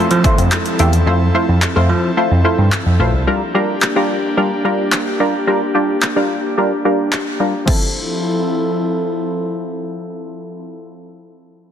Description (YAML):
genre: dance-pop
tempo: 109 BPM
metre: 4/4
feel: straight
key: F major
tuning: A4 = 441 Hz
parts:
  - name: punchy chord stab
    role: accompaniment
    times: 0.0-11.1 s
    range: F3 to C5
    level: -17 LUFS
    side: equal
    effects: chorus, sidechain pumping, low-pass filter
  - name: airy breathy pad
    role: sustained chords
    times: 0.0-10.6 s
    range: F3 to A4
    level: -21 LUFS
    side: left 1 dB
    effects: chorus, sidechain pumping, low-pass filter
  - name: bell-like tine electric piano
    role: bass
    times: 0.0-3.2 s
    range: Bb1 to F3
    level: -14 LUFS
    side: equal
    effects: medium stereo tremolo, sidechain pumping
  - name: downlifter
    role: sound effects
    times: 0.0-3.3 s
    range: none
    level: -28 LUFS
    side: right 2 dB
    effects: none
  - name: punchy analog drum machine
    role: drums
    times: 0.1-7.8 s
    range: crash cymbal, handclaps, hi-hat, kick drum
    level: -19 LUFS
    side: equal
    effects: overdrive
room: light reverb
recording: dense, heavily limited modern master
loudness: -14 LUFS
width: side -9 dB against mid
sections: 0.0-7.7 A section; 7.7-9.9 B section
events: filter sweep 0.0-7.7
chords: 0.0 Fmaj7; 3.3 Bb6; 7.7 Fmaj7